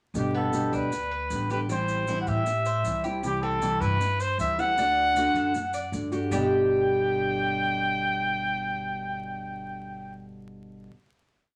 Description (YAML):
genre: latin, Cuban son and guajira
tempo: 156 BPM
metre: 4/4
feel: straight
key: G major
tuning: A4 = 439 Hz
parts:
  - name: nylon-string guitar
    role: accompaniment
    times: 0.1-10.9 s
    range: G2 to G4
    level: -33 LUFS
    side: equal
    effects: none
  - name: upright bass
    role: bass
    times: 0.1-10.9 s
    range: G1 to A2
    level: -36 LUFS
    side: equal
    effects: none
  - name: maracas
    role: percussion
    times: 0.1-6.4 s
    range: none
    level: -47 LUFS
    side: equal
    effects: none
  - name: clear trumpet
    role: melody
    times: 0.2-10.2 s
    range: G4 to G5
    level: -29 LUFS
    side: equal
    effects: none
  - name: Cuban tres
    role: arpeggios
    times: 0.3-10.9 s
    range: G3 to D5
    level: -33 LUFS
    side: equal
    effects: none
room: wet studio ambience, RT60 0.5 s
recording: vinyl crackle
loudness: -26 LUFS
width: mono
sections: 0.1-6.3 verse; 6.3-9.4 final chord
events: none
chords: 0.1 G; 1.7 Am7; 3.2 C; 4.8 D; 6.3 G